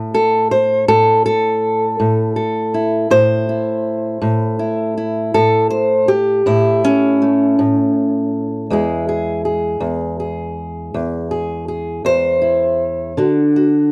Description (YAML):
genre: acoustic country blues, solo or duo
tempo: 54 BPM (dotted quarters)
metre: 12/8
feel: straight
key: unclear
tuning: A4 = 443 Hz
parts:
  - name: fingerpicked old ladder-braced acoustic guitar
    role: solo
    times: 0.0-13.9 s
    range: E2 to C5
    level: -16 LUFS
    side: equal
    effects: none
room: little or no reverb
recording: dry, close 1970s-style studio recording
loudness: -16 LUFS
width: mono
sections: 0.0-13.9 A section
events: none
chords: 0.0 A; 8.7 E; 13.2 D